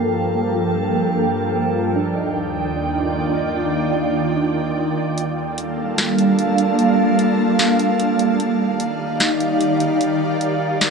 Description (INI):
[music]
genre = hip hop, atmospheric cloud-rap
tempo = 149 BPM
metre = 4/4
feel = half-time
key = G minor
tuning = A4 = 440 Hz
[part]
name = ethereal airy pad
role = sustained chords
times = 0.0-10.9 s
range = Eb2 to A5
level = -18 LUFS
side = right 1 dB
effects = ensemble chorus, built-in reverb, low-pass filter
[part]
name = soft electric-piano-like synth keys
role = arpeggios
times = 0.0-5.2 s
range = Bb3 to F4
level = -24 LUFS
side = right 2 dB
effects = chorus, phaser, low-pass filter, tape echo
[part]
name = drifting glass-harmonics texture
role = texture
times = 0.0-10.9 s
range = G3 to A5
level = -29 LUFS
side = equal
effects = chorus, built-in reverb
[part]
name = trap drum kit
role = drums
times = 5.2-10.9 s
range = hi-hat, snare drum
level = -20 LUFS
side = equal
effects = vintage 12-bit sampler grit
[sound]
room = moderate echo chamber reverb, RT60 1.3 s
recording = none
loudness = -17 LUFS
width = side -4 dB against mid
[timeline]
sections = 0.0-5.2 A section; 5.2-10.9 B section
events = filter sweep 0.0-5.2; kick muted 5.2-10.9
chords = 0.0 Gm9; 2.0 Ebmaj7; 5.2 Gm9; 8.4 Ebmaj7